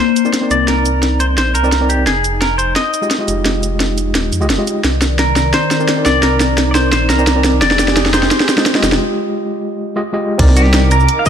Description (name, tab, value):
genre	liquid drum and bass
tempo	173 BPM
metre	4/4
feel	straight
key	C minor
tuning	A4 = 440 Hz
part	clean electric guitar	melody	0.0-3.1, 5.2-11.3 s	G4 to F5	-17 LUFS	equal	tape echo
part	lush unison pad	sustained chords	0.0-11.3 s	Eb3 to D6	-21 LUFS	left 3 dB	chorus, phaser
part	overdriven tine electric piano	accompaniment	0.2-10.9 s	Ab3 to Eb5	-19 LUFS	equal	fast tremolo
part	drum and bass drum kit	drums	0.2-11.3 s	crash cymbal, hi-hat, shaker, snare drum	-16 LUFS	equal	none
part	dark detuned saw bass	bass	0.5-11.1 s	Eb1 to F2	-16 LUFS	equal	none
part	electronic kick drum	drums	10.4-11.3 s	none	-12 LUFS	equal	none
room	moderate lush hall reverb, RT60 1.7 s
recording	none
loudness	-12 LUFS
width	side -8 dB against mid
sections	0.0-10.4 A section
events	build-up 0.0-10.4; drum fill 0.0-9.0; filter sweep on analog synth pad 0.0-10.4; break 9.0-10.4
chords	0.0 Cm9; 2.1 Fm9; 4.8 Cm9; 7.6 Fm9; 10.4 Cm9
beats	0.34 | 0.68 1.03 1.38 1.72 | 2.07 2.42 2.76 3.11 | 3.46 3.80 4.15 4.50 | 4.84 5.19 5.54 5.88 | 6.23 6.58 6.92 7.27 | 7.62 7.96 8.31 8.66 | 9.01 9.35 9.70 10.05 | 10.39 10.74 11.09